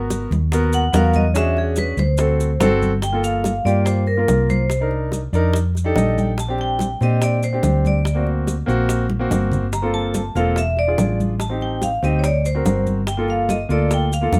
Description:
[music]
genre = Afro-Cuban jazz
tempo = 143 BPM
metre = 4/4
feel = straight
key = G minor from 3.0 s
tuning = A4 = 440 Hz
[part]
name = warm concert grand piano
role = accompaniment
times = 0.0-14.4 s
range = Bb3 to G5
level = -25 LUFS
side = equal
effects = none
[part]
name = hollow-body short-scale fingered electric bass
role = bass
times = 0.0-14.4 s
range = E1 to Bb2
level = -22 LUFS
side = equal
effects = none
[part]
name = bongos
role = percussion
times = 0.1-14.4 s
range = none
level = -29 LUFS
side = equal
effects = none
[part]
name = congas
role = percussion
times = 0.1-14.4 s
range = none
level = -28 LUFS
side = equal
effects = none
[part]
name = maracas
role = percussion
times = 0.1-14.4 s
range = none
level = -37 LUFS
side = equal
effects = none
[part]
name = vibraphone with medium hard mallets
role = melody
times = 0.7-14.4 s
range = G#4 to Bb5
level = -26 LUFS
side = equal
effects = none
[sound]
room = light reverb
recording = none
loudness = -19 LUFS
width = mono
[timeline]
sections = 0.0-3.0 A section; 3.0-14.4 B section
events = vibraphone solo 0.0-3.0; grand piano fill 5.8-6.4; drum fill 9.1-9.7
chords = 0.0 Abm7; 1.4 E13; 2.2 D7; 3.0 Gm9; 4.7 Cm7; 5.5 F13; 6.4 Bb6; 8.1 Daug7; 9.7 Gm11; 10.6 E7b9; 11.4 Am7b5; 12.2 D7b13; 13.1 Gm9

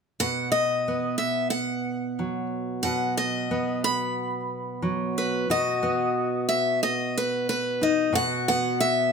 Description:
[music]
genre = acoustic folk duo or small band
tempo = 91 BPM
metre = 4/4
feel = straight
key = B major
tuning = A4 = 439 Hz
[part]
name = picked steel-string acoustic guitar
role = melody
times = 0.2-9.1 s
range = B4 to B5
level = -25 LUFS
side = left 1 dB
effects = plate reverb
[part]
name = fingerpicked steel-string acoustic guitar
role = accompaniment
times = 0.2-9.1 s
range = B2 to F#4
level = -27 LUFS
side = right 1 dB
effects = none
[sound]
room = moderate studio reverb, RT60 0.6 s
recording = none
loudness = -23 LUFS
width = side -5 dB against mid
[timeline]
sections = 0.2-5.5 A section; 5.5-9.1 B section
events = none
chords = 0.2 B

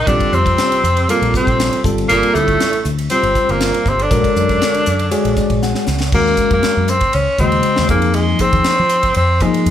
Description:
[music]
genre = electric jazz fusion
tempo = 119 BPM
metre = 4/4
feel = straight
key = Eb dorian from 6.1 s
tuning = A4 = 440 Hz
[part]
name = clear tenor saxophone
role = melody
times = 0.0-9.7 s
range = Ab3 to D4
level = -16 LUFS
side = equal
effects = none
[part]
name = clear tenor saxophone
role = second line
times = 0.0-5.6 s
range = A2 to Eb3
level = -23 LUFS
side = right 3 dB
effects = none
[part]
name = mellow fretless electric bass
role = bass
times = 0.0-9.7 s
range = G1 to F3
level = -19 LUFS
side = equal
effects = none
[part]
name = bell-like tine electric piano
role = accompaniment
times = 0.1-9.7 s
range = Db3 to F#5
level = -18 LUFS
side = left 3 dB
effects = fast stereo tremolo
[part]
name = crisp fusion drum kit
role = drums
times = 0.1-9.7 s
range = crash cymbal, hi-hat, kick drum, ride cymbal, snare drum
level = -21 LUFS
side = equal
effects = none
[sound]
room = moderate large studio reverb, RT60 0.8 s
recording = band playing live in one room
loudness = -12 LUFS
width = side -10 dB against mid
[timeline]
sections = 0.0-6.1 A section; 6.1-9.7 B section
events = tine electric piano fill 5.1-6.1; drum fill 5.6-6.1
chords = 0.0 Bbsus2; 1.8 Gsus2; 4.1 Bb7alt; 6.1 Ebm7; 7.9 Fm7

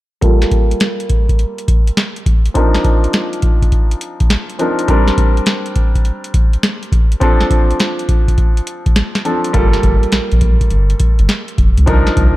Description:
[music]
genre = R&B, new jack swing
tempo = 103 BPM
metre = 4/4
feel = swing 67% on 16ths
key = G minor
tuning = A4 = 439 Hz
[part]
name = clear concert grand piano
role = accompaniment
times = 0.2-12.4 s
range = F3 to Bb4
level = -18 LUFS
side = equal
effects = low-pass filter
[part]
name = booming analog drum machine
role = drums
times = 0.2-12.4 s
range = hi-hat, kick drum, snare drum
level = -13 LUFS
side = equal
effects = none
[part]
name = round analog bass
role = bass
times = 9.5-12.3 s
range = F1 to C#2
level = -13 LUFS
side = equal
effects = none
[sound]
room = little or no reverb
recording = dark, warm production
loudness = -12 LUFS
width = side -17 dB against mid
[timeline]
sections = 0.2-9.5 A section; 9.5-12.4 B section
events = filter sweep on grand piano 0.2-9.5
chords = 0.2 Gm9; 2.6 Cm11; 4.9 Bb69; 7.2 Dm7; 9.5 Gm9

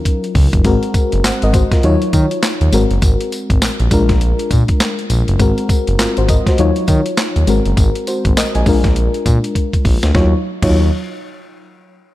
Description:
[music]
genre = R&B, new jack swing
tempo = 101 BPM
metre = 4/4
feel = swing 61% on 16ths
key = Eb dorian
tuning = A4 = 440 Hz
[part]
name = FM electric piano with tremolo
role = accompaniment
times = 0.0-10.9 s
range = Gb3 to Ab5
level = -18 LUFS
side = left 2 dB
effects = low-pass filter
[part]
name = boom bap sampler-style drum kit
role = drums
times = 0.1-10.7 s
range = crash cymbal, handclaps, hi-hat, kick drum, snare drum, tambourine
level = -16 LUFS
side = equal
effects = none
[part]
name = smooth synth bass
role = bass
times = 0.4-10.9 s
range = Gb1 to Eb3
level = -15 LUFS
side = equal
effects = none
[sound]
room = light reverb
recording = dark, warm production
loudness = -12 LUFS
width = side -16 dB against mid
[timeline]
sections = 0.6-10.1 A section; 10.1-12.1 B section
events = drum fill 0.0-0.6, 9.6-10.1; filter sweep on FM electric piano 0.6-10.1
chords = 0.0 Ebm9; 0.6 Ab9; 1.8 Ebm9; 2.7 Ab9; 3.9 Bb7; 5.4 Ab9; 6.6 Ebm9; 7.5 Ab9; 8.7 Bb7; 10.1 Ebm9

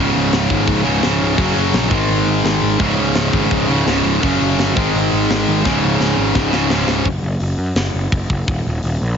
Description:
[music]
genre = punk rock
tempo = 169 BPM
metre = 4/4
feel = straight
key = unclear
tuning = A4 = 440 Hz
[part]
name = distorted electric guitar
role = riff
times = 0.0-7.1 s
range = Db2 to Ab3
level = -18 LUFS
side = right 13 dB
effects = overdrive
[part]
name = tight distorted guitar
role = riff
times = 0.0-7.1 s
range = Db2 to Ab3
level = -18 LUFS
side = left 11 dB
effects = distortion
[part]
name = fuzz picked electric bass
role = bass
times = 0.0-9.1 s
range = Db1 to Gb2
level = -20 LUFS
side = equal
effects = overdrive
[part]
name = tight metal drum kit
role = drums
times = 0.3-8.9 s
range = crash cymbal, hi-hat, kick drum, snare drum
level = -22 LUFS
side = equal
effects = none
[sound]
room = little or no reverb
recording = heavily compressed radio sound, multiband compression, nothing above 7.7 kHz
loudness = -14 LUFS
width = side -7 dB against mid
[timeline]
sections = 0.0-7.1 A section; 7.1-9.2 B section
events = drum fill 5.6-7.1; half time 7.1-9.2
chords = 0.0 Db5; 1.4 Gb; 1.9 Ab5; 2.8 Db5; 4.2 Gb5; 4.8 Ab5; 5.6 Db5; 7.1 N.C.; 8.5 Eb5

